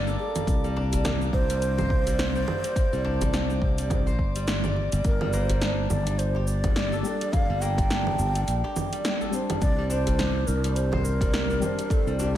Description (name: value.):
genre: organic downtempo.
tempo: 105 BPM.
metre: 4/4.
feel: swing 57% on 16ths.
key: G minor.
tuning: A4 = 440 Hz.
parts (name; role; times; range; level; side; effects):
breathy low ney; melody; 0.0-12.4 s; G4 to G5; -31 LUFS; right 2 dB; tape echo, slapback echo.
steel-string zither; arpeggios; 0.0-12.4 s; G3 to D5; -33 LUFS; equal; tape echo, slapback echo.
sustaining fretless electric bass; bass; 0.0-12.4 s; G1 to C2; -26 LUFS; equal; wide subtle chorus, sidechain pumping.
drifting glass-harmonics texture; texture; 0.0-5.1 s; Bb3 to D6; -42 LUFS; right 2 dB; chorus, built-in reverb.
deep house drum kit; drums; 0.1-12.3 s; cabasa, congas, hi-hat, snare drum; -30 LUFS; right 1 dB; overdrive.
djembe; percussion; 0.1-12.3 s; none; -33 LUFS; equal; none.
electronic kick drum; drums; 0.5-12.0 s; none; -25 LUFS; equal; overdrive.
felt-muted upright piano; accompaniment; 7.0-12.4 s; G3 to C5; -34 LUFS; left 3 dB; sidechain pumping, tape echo, slapback echo.
room: light reverb, small room reverb.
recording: none.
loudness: -23 LUFS.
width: side -12 dB against mid.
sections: 0.0-5.0 A section; 5.0-12.4 B section.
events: none.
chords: 0.5 Csus2; 5.0 Gmadd9; 9.6 Csus2.